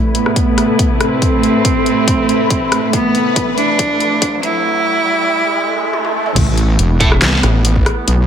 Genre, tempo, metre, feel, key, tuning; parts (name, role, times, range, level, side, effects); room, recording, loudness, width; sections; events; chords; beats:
heavy wobble dubstep; 140 BPM; 4/4; half-time; A minor; A4 = 440 Hz
rich cello; melody; 0.0-6.3 s; B3 to E4; -16 LUFS; right 2 dB; low-pass filter, digital delay
rich symphonic string section; sustained chords; 0.0-8.3 s; A2 to B4; -22 LUFS; equal; sidechain pumping, low-pass filter
riser and swell; sound effects; 2.4-6.4 s; -24 LUFS; right 1 dB
ethereal airy pad; texture; 0.0-4.6 s; A3 to B5; -19 LUFS; right 1 dB; ensemble chorus, built-in reverb, sidechain pumping
dubstep drum kit; drums; 0.1-8.2 s; crash cymbal, handclaps, hi-hat, rim click, snare drum, toms; -18 LUFS; left 2 dB; high-pass filter on hats, high-pass filter on snare, high-pass filter on toms, high-pass filter on cymbals, high-pass filter on room
electronic kick drum; drums; 0.4-7.8 s; -17 LUFS; equal
wobble bass; bass; 6.4-8.3 s; E1 to C2; -13 LUFS; equal; chorus, overdrive
thick fuzz guitar; stabs; 7.0-7.1 s; A3 to A4; -20 LUFS; right 3 dB; distortion, digital delay
snarling distorted saw bass; bass; 7.4-7.8 s; A1; -13 LUFS; equal; distortion, overdrive
light reverb; high-pass filter; -12 LUFS; side -8 dB against mid
0.0-6.4 A section; 6.4-8.3 B section
build-up 0.0-6.4; filter sweep on cello 0.0-6.4; filter sweep 0.0-6.4; riser 2.4-6.4; drum fill 2.9-4.6, 5.9-6.4; swell 5.5-6.4; drop 6.4-8.3
0.0 Amadd9; 6.4 Asus2
0.36 0.79 | 1.22 1.65 2.08 2.50 | 2.93 3.36 3.79 4.22 | 4.65 5.08 5.50 5.93 | 6.36 6.79 7.22 7.65 | 8.08